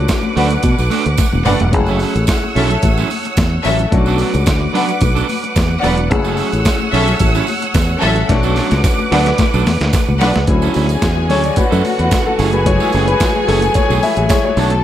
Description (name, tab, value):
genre	disco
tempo	110 BPM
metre	4/4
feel	straight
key	F# minor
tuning	A4 = 440 Hz
part	warm grand piano	accompaniment	0.0-14.7 s	F#3 to E5	-21 LUFS	left 4 dB	none
part	bright studio string section	sustained chords	0.0-14.8 s	D3 to E6	-22 LUFS	right 2 dB	none
part	fingered electric bass	bass	0.0-14.8 s	E1 to B2	-16 LUFS	equal	none
part	electric guitar at the edge of break-up	accompaniment	0.1-14.8 s	F#3 to C#5	-23 LUFS	right 10 dB	none
part	dusty soul sampler-style drum kit	drums	0.1-14.8 s	hi-hat, kick drum, snare drum, toms	-18 LUFS	equal	overdrive
part	congas	percussion	0.1-14.7 s	none	-26 LUFS	left 7 dB	none
part	tambourine	percussion	0.1-14.7 s	none	-32 LUFS	right 17 dB	none
part	rich studio string section	second line	0.4-14.8 s	C#4 to A5	-19 LUFS	left 2 dB	none
room	light reverb, studio reverb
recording	none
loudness	-12 LUFS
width	side -11 dB against mid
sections	0.0-10.5 A section; 10.5-14.8 B section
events	drum fill 1.2-1.7, 8.3-10.5; grand piano solo 10.5-14.8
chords	0.0 Bm7; 1.7 F#m7; 3.9 Bm7; 6.1 F#m7; 8.3 Bm7; 10.5 Dmaj9; 12.4 F#m9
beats	0.09 0.64 1.18 | 1.73 2.28 2.83 3.37 | 3.92 4.47 5.01 5.56 | 6.11 6.66 7.20 7.75 | 8.29 8.84 9.39 9.93 | 10.48 11.02 11.57 12.12 | 12.66 13.21 13.75 14.30